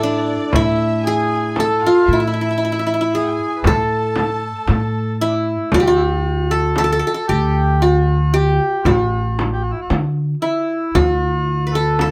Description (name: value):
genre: Arabic maqam ensemble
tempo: 115 BPM (eighths)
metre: 10/8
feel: straight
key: A maqam suznak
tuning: A4 = 440 Hz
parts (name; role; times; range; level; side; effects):
- qanun; melody; 0.0-12.1 s; D4 to B4; -20 LUFS; equal; none
- accordion; second line; 0.0-12.1 s; D4 to B4; -28 LUFS; equal; slapback echo
- rich studio violin section; second line; 0.0-5.2 s; D5 to A5; -31 LUFS; equal; none
- upright bass; bass; 0.0-12.1 s; A1 to D3; -22 LUFS; equal; none
- frame drum; percussion; 0.5-12.1 s; none; -22 LUFS; equal; none
room: light reverb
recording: none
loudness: -17 LUFS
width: mono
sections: 0.0-5.7 A section; 5.7-12.1 B section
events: none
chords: none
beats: 0.01 | 0.53 1.05 1.57 2.09 2.61 3.13 3.65 4.17 4.69 5.21 | 5.73 6.25 6.77 7.29 7.82 8.34 8.86 9.38 9.90 10.42 | 10.94 11.46 11.98